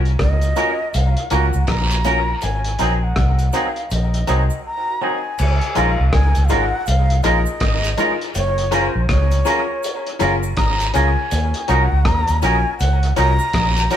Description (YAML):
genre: lovers rock reggae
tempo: 81 BPM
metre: 4/4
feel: swing 61% on 16ths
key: Db major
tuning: A4 = 440 Hz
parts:
  - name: vintage muted fingered electric bass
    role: bass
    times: 0.0-13.9 s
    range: Gb1 to Eb2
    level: -18 LUFS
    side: equal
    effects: none
  - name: cloth-damped thuddy drum kit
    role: drums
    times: 0.1-14.0 s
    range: crash cymbal, hi-hat, kick drum, rim click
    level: -24 LUFS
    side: equal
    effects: dub echo
  - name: breathy shakuhachi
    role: melody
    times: 0.2-14.0 s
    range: C5 to Bb5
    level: -24 LUFS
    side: equal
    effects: none
  - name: cabasa and guiro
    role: percussion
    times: 0.4-14.0 s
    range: none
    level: -32 LUFS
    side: right 3 dB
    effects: dub echo
  - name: bright grand piano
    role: accompaniment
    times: 0.6-14.0 s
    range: C4 to Bb4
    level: -25 LUFS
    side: left 6 dB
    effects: dub echo
  - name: twangy electric guitar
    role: stabs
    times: 0.6-14.0 s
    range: Gb3 to Bb4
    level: -22 LUFS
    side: right 3 dB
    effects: none
room: moderate stone room reverb, RT60 1.1 s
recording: band playing live in one room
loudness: -15 LUFS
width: side -10 dB against mid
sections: 0.0-5.4 A section; 5.4-14.0 B section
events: break 4.6-5.4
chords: 0.0 Ebm7; 2.4 Ab7; 5.4 Db6; 8.4 Gbmaj7; 11.3 Ebm7